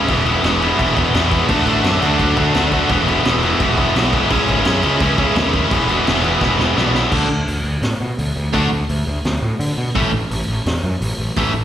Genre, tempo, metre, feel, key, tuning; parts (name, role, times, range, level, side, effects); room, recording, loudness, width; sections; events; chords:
punk rock; 170 BPM; 4/4; straight; E mixolydian; A4 = 440 Hz
distorted electric guitar; riff; 0.0-11.5 s; A2 to F#4; -17 LUFS; left 6 dB; overdrive
distorted electric guitar; riff; 0.0-11.5 s; E2 to D4; -20 LUFS; right 12 dB; overdrive, slapback echo
fuzz picked electric bass; bass; 0.1-11.6 s; E1 to D3; -20 LUFS; equal; overdrive
raw garage drum kit; drums; 0.1-11.4 s; crash cymbal, hi-hat, kick drum, snare drum; -21 LUFS; equal
studio ambience; live gig heard through the venue's PA, recital hall reverb; -14 LUFS; side -10 dB against mid
0.0-7.1 A section; 7.1-11.6 B section
drum fill 6.4-7.1; half time 7.1-11.6
0.1 E; 1.5 D; 2.9 E; 4.3 C#m; 5.7 E; 7.1 D5; 10.0 A